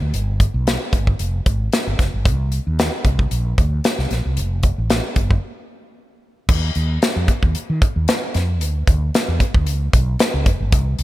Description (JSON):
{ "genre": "polished 1980s jazz-funk pop", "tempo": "113 BPM", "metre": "4/4", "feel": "swing 54% on 16ths", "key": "unclear", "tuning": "A4 = 445 Hz", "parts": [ { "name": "mellow fretless electric bass", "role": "bass", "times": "0.0-11.0 s", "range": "F1 to Eb3", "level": "-20 LUFS", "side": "equal", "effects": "none" }, { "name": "modern studio drum kit", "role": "drums", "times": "0.1-11.0 s", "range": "crash cymbal, hi-hat, kick drum, snare drum", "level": "-18 LUFS", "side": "equal", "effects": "gated reverb" } ], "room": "little or no reverb", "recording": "none", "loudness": "-16 LUFS", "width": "side -16 dB against mid", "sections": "0.0-6.5 A section; 6.5-11.0 B section", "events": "break 5.4-6.5", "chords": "none", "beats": "| 0.14 0.67 1.20 1.73 | 2.25 2.78 3.31 3.84 | 4.37 4.90 5.43 5.96 | 6.49 7.02 7.55 8.08 | 8.61 9.14 9.67 10.20 | 10.73" }